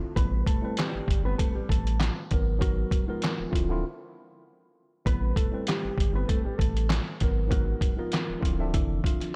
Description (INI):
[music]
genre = hip hop, boom-bap hip-hop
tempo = 98 BPM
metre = 4/4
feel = swing 54% on 16ths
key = A minor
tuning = A4 = 443 Hz
[part]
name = mellow tine electric piano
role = accompaniment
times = 0.0-9.4 s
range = G#2 to E5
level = -37 LUFS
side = equal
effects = cassette tape, high-pass filter, low-pass filter
[part]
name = mellow electric guitar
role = melody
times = 0.2-9.3 s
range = E3 to B4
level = -38 LUFS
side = equal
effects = lush chorus, high-pass filter, low-pass filter, delay
[part]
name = saturated sub bass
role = bass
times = 0.2-9.0 s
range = D1 to A1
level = -31 LUFS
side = equal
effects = none
[part]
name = trip hop sampler-style drum kit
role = drums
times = 0.2-9.3 s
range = handclaps, hi-hat, kick drum, snare drum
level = -30 LUFS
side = equal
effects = none
[sound]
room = light reverb, digital ambience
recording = none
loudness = -27 LUFS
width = mono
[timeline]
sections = 0.0-9.4 A section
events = break 3.8-5.1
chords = 0.2 Am9; 2.3 G#m9; 3.5 Dm9; 5.1 Am9; 7.2 G#m9; 8.4 Dm9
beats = | 0.17 0.78 1.39 2.00 | 2.61 3.23 3.84 4.45 | 5.06 5.67 6.29 6.90 | 7.51 8.12 8.74 9.35